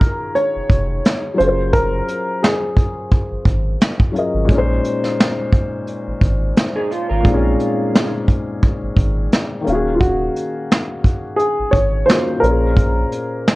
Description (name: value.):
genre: lo-fi hip hop.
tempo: 87 BPM.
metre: 4/4.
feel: swing 56% on 16ths.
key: Bb minor.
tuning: A4 = 440 Hz.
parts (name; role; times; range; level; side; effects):
dark upright piano; melody; 0.0-3.4, 9.9-13.6 s; F4 to Db5; -20 LUFS; equal; low-pass filter, plate reverb.
felt-muted upright piano; accompaniment; 0.0-13.6 s; Bb2 to Bb5; -22 LUFS; left 2 dB; cassette tape, low-pass filter, plate reverb.
vintage brush drum kit; drums; 0.0-13.6 s; hi-hat, kick drum, snare drum; -16 LUFS; equal; none.
soft dub sub bass; bass; 0.6-13.0 s; Eb1 to Bb1; -20 LUFS; equal; none.
electric guitar through a small old amp; second line; 6.8-8.1 s; Eb4 to C5; -22 LUFS; right 4 dB; lush chorus, low-pass filter, analog delay.
room: light reverb.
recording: worn, warbling old tape, cassette tape, warbly pitch drift.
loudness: -15 LUFS.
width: side -20 dB against mid.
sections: 0.0-13.6 A section.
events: none.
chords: 0.0 Ebm11; 1.4 Gbmaj9#11; 4.5 Bbm11; 9.7 Ebm11; 12.4 Bbm9.